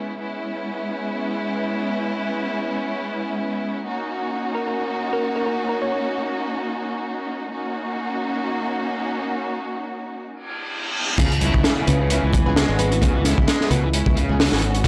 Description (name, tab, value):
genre	breakbeat, breaks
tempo	131 BPM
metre	4/4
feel	swing 56% on 16ths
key	C# dorian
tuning	A4 = 440 Hz
part	clear studio string section	stabs	0.0-14.9 s	G#3 to G#4	-27 LUFS	equal	vintage 12-bit sampler grit, analog delay
part	downlifter, reverse cymbal and impact	sound effects	0.2, 10.4-13.0 s	none	-30 LUFS	equal	none
part	thumb-piano-like synth pluck	melody	4.5-6.0, 11.9-13.9 s	A#4 to C#5	-30 LUFS	equal	chorus, phaser, telephone sound, analog delay
part	crunchy overdriven guitar	riff	11.2-14.9 s	B2 to G#3	-29 LUFS	equal	none
part	modern bright fingered electric bass	bass	11.2-14.9 s	G#1 to C#2	-24 LUFS	equal	tube saturation
part	crunchy breakbeat drum kit	drums	11.2-14.9 s	crash cymbal, hi-hat, kick drum, snare drum	-22 LUFS	equal	none
part	congas	percussion	11.2-14.9 s	none	-29 LUFS	equal	none
room	light reverb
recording	dry, gritty hardware recording, cassette tape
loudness	-23 LUFS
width	mono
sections	0.0-11.2 A section; 11.2-14.9 B section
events	reverse cymbal 10.4-11.2; drop 11.2-14.9; impact 11.2-13.0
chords	0.0 C#m7; 3.9 D#m7; 11.2 C#m7